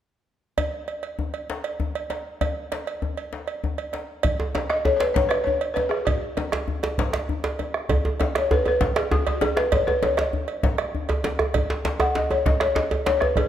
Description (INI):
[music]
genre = west african traditional, West African drum ensemble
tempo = 131 BPM (dotted quarters)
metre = 12/8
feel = straight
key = B major pentatonic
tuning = A4 = 440 Hz
[part]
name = cowbell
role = percussion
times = 0.6-13.5 s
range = none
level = -30 LUFS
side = right 6 dB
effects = none
[part]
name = djembe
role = percussion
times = 0.6-13.5 s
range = none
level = -29 LUFS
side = left 4 dB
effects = none
[part]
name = bombo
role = percussion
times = 4.2-13.5 s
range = none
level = -27 LUFS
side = right 2 dB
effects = none
[part]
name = djembe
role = percussion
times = 4.4-13.5 s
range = none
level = -25 LUFS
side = right 2 dB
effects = none
[part]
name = balafon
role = melody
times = 4.7-13.5 s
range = F#4 to F#5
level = -23 LUFS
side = left 2 dB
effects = none
[sound]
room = moderate recital hall reverb, RT60 1.6 s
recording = none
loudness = -22 LUFS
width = side -10 dB against mid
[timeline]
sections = 0.6-4.2 A section; 4.2-13.5 B section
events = none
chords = none